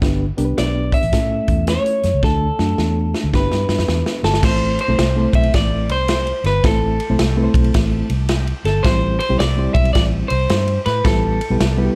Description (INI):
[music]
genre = uptempo 1960s-style soul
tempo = 109 BPM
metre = 4/4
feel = swing 65% on 8ths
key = A dorian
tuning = A4 = 439 Hz
[part]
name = reed electric piano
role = accompaniment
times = 0.0-12.0 s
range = G3 to C5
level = -25 LUFS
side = equal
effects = fast tremolo
[part]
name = vintage muted fingered electric bass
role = bass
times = 0.0-11.9 s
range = G1 to A2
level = -22 LUFS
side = equal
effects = none
[part]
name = natural country drum kit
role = drums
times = 0.0-11.8 s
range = crash cymbal, hi-hat, kick drum, ride cymbal, snare drum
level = -23 LUFS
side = equal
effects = none
[part]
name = electric guitar through a small old amp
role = melody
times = 0.6-12.0 s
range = A4 to E5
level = -24 LUFS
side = equal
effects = none
[sound]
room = little or no reverb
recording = dark, warm production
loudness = -17 LUFS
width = mono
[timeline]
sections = 0.0-4.4 A section; 4.4-12.0 B section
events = drum fill 2.2-4.4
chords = 0.0 G; 1.1 A; 2.2 D; 3.3 G6; 4.4 Am; 8.8 C/A; 11.1 Em/A